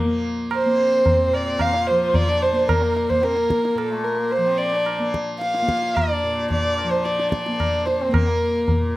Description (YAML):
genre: indian classical, Hindustani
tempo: 110 BPM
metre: 4/4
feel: straight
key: Bb raga hamsadhwani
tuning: A4 = 442 Hz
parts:
  - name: dark violin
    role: melody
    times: 0.0-8.9 s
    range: A4 to F5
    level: -20 LUFS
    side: right 1 dB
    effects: none
  - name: dark sarangi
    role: second line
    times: 0.0-9.0 s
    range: A3 to F4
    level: -28 LUFS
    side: left 3 dB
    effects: none
  - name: tanpura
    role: drone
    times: 0.0-9.0 s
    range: Bb2 to Bb3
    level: -28 LUFS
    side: right 1 dB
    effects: none
  - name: tabla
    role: percussion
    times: 0.5-8.9 s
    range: none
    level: -24 LUFS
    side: equal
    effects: none
room: moderate small room reverb, RT60 0.5 s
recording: none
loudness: -18 LUFS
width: side -17 dB against mid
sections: 0.0-9.0 A section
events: none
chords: none